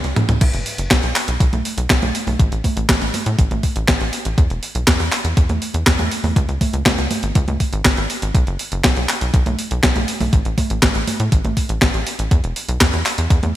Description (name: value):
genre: italo disco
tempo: 121 BPM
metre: 4/4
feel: straight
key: unclear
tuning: A4 = 442 Hz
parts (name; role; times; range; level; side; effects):
- tight sequencer bass; bass; 0.0-13.5 s; E1 to A2; -21 LUFS; equal; tube saturation
- clean 12-bit digital drum machine; drums; 0.0-13.5 s; congas, crash cymbal, handclaps, hi-hat, snare drum, toms; -19 LUFS; equal; overdrive, gated reverb
- electronic kick drum; drums; 0.4-13.4 s; none; -17 LUFS; equal; overdrive
room: light reverb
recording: bright 1980s-style digital production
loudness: -15 LUFS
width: side -14 dB against mid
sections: 0.4-13.6 A section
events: drum fill 0.0-0.4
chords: none